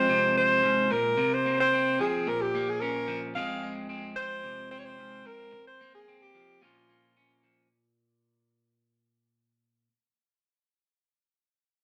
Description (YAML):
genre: highlife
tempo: 110 BPM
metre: 4/4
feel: straight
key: F minor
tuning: A4 = 442 Hz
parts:
  - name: clear alto saxophone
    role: melody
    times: 0.0-7.4 s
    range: F4 to F5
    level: -29 LUFS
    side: equal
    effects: none
  - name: electric guitar at the edge of break-up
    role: accompaniment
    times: 0.0-9.9 s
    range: F2 to Ab4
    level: -34 LUFS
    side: equal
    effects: none
room: wet studio reverb, RT60 0.8 s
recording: none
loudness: -27 LUFS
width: mono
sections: 0.0-7.7 A section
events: fade-out 0.0-7.7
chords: 0.0 Fm; 1.2 C7sus4; 2.3 Bbm; 3.4 Fm; 5.5 C7sus4; 6.6 Bbm